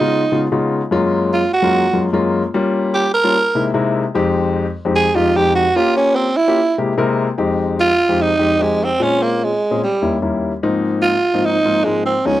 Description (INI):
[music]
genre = jazz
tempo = 148 BPM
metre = 4/4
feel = straight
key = F minor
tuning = A4 = 440 Hz
[part]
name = growling tenor saxophone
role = melody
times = 0.0-12.4 s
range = G3 to Bb4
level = -15 LUFS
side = right 2 dB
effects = none
[part]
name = warm concert grand piano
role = accompaniment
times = 0.0-12.4 s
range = Db2 to Bb4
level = -17 LUFS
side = left 3 dB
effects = none
[sound]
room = light reverb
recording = dry, close 1970s-style studio recording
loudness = -14 LUFS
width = side -14 dB against mid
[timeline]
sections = 0.0-7.4 A section; 7.4-12.4 B section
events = tenor saxophone solo 0.0-7.4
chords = 0.0 Db9; 0.9 Gbmaj7; 2.5 Gm7b5; 3.3 C7alt; 4.2 Fm9; 5.8 Gm7b5; 6.6 C7b13; 7.4 Fm9; 9.0 Bbm7; 9.8 Eb7b9; 10.6 Ab6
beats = 0.12 0.52 | 0.92 1.33 1.73 2.13 | 2.54 2.94 3.34 3.75 | 4.15 4.55 4.96 5.36 | 5.77 6.17 6.57 6.98 | 7.38 7.79 8.19 8.60 | 9.01 9.41 9.82 10.22 | 10.63 11.03 11.44 11.85 | 12.25